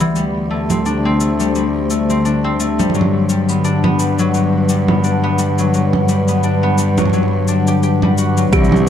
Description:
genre	folktronica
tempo	86 BPM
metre	4/4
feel	swing 56% on 16ths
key	G major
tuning	A4 = 440 Hz
part	warbly tape-like pad	sustained chords	0.0-8.9 s	D3 to F#5	-20 LUFS	equal	chorus, built-in reverb
part	concert harp	arpeggios	0.0-8.9 s	E3 to G4	-17 LUFS	left 4 dB	vintage 12-bit sampler grit, low-pass filter, ping-pong delay
part	warm cello	bass	0.0-8.9 s	C2 to G2	-18 LUFS	equal	tube saturation
part	electronic cabasa, congas and hi-hat	drums	0.0-8.9 s	none	-20 LUFS	right 4 dB	none
part	kalimba	second line	8.5-8.7 s	G4	-18 LUFS	right 5 dB	none
part	electronic kick drum	drums	8.5-8.7 s	none	-15 LUFS	equal	overdrive
room	moderate studio reverb, RT60 0.6 s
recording	vinyl crackle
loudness	-13 LUFS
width	side -9 dB against mid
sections	0.0-8.5 A section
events	filter sweep on ambient pad 0.0-8.5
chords	0.2 D7sus4; 2.9 Gmaj7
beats	| 0.16 0.85 1.55 2.25 | 2.95 3.65 4.34 5.04 | 5.74 6.44 7.13 7.83 | 8.53

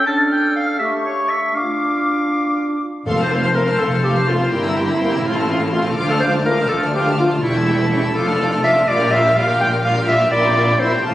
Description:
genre	quick classical-period movement for symphony orchestra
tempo	82 BPM (dotted quarters)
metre	6/8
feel	straight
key	D minor, F major from 3.1 s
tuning	A4 = 440 Hz
part	bright small flute group	second line	0.0-2.8 s	C#6 to F6	-23 LUFS	left 2 dB	none
part	clear clarinet	second line	0.0-11.0 s	E4 to G5	-19 LUFS	equal	none
part	clear oboe	second line	0.0-2.8 s	C#5 to A5	-20 LUFS	equal	none
part	warm French horn section	sustained chords	0.0-10.9 s	G3 to F4	-24 LUFS	right 1 dB	none
part	rich chamber violin section	second line	3.1-11.1 s	E5 to F6	-25 LUFS	left 2 dB	none
part	rich chamber viola section	accompaniment	3.1-11.1 s	F3 to C5	-22 LUFS	equal	none
part	warm chamber cello section	bass	3.1-11.1 s	D2 to Bb2	-25 LUFS	equal	none
part	warm chamber double bass section	bass	3.1-11.1 s	E1 to D2	-22 LUFS	equal	none
part	timpani	percussion	3.1-3.8 s	F2	-28 LUFS	equal	none
part	dark chamber violin section	melody	3.2-11.1 s	E4 to G5	-28 LUFS	left 2 dB	none
room	moderate scoring stage reverb, RT60 2.0 s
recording	recorded on a phone in the room, studio ambience, compression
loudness	-15 LUFS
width	side -14 dB against mid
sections	0.0-3.1 A section; 3.1-11.1 B section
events	none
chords	0.1 Dm; 0.8 A7; 1.5 Dm; 3.1 F; 4.5 C7/G; 5.2 F/A; 6.0 Dm; 7.4 A7/E; 8.1 Dm/F; 8.9 Gm7/Bb; 10.3 C7/Bb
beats	| 0.07 0.80 | 1.55 2.31 | 3.06 3.79 | 4.52 5.25 | 5.97 6.70 | 7.42 8.15 | 8.86 9.59 | 10.31 11.04

